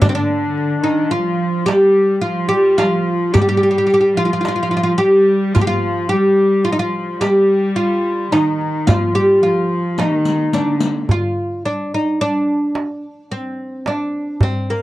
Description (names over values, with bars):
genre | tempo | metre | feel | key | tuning
Turkish makam ensemble | 108 BPM (eighths) | 10/8 | straight | unclear | A4 = 440 Hz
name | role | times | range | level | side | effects
oud | melody | 0.0-14.8 s | Bb3 to G4 | -16 LUFS | equal | none
breathy clarinet | second line | 0.0-11.1 s | D4 to G4 | -23 LUFS | left 4 dB | slapback echo
warm studio cello section | second line | 0.0-11.1 s | D3 to G3 | -21 LUFS | right 1 dB | none
darbuka | percussion | 0.0-14.7 s | none | -19 LUFS | right 1 dB | none
riq | percussion | 0.0-11.1 s | none | -25 LUFS | left 3 dB | none
room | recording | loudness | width
light reverb | dry, close 1970s-style studio recording | -14 LUFS | side -16 dB against mid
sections
0.0-11.1 A section; 11.1-14.8 B section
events
drum fill 10.0-11.1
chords
none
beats
| 0.02 0.57 1.12 1.68 2.23 2.79 3.34 3.89 4.45 5.00 | 5.55 6.11 6.66 7.21 7.77 8.32 8.88 9.43 9.98 10.54 | 11.09 11.65 12.20 12.75 13.31 13.86 14.42